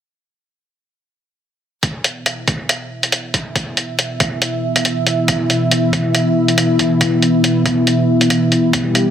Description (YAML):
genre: deep dubstep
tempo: 139 BPM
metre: 4/4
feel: swing 57% on 16ths, half-time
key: unclear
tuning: A4 = 441 Hz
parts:
  - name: dark analog pad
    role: sustained chords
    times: 1.8-9.1 s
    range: B3 to E5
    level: -15 LUFS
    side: equal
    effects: chorus
  - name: electronic hi-hat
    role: drums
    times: 1.8-9.1 s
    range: none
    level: -18 LUFS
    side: equal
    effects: none
  - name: electronic kick drum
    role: drums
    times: 1.8-8.8 s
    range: none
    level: -22 LUFS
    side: equal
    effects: high-pass filter on kick
room: moderate lush hall reverb, RT60 2.0 s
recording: dense, heavily limited modern master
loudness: -14 LUFS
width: side -9 dB against mid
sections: 1.8-9.1 A section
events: none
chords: 1.8 E5